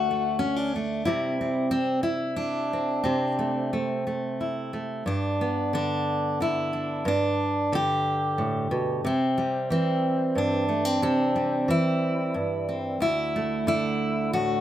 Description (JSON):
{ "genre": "folk, solo fingerstyle acoustic guitar", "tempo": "90 BPM", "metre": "3/4", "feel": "straight", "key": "unclear", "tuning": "A4 = 440 Hz", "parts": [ { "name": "fingerpicked steel-string acoustic guitar", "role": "solo", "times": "0.0-14.6 s", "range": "D2 to G4", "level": "-24 LUFS", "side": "equal", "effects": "none" } ], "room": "light reverb", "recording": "none", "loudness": "-24 LUFS", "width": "side -11 dB against mid", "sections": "0.0-5.1 A section; 5.1-14.6 B section", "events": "none", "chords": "0.0 D; 1.1 C6; 5.1 G; 9.1 C; 13.0 Dadd9" }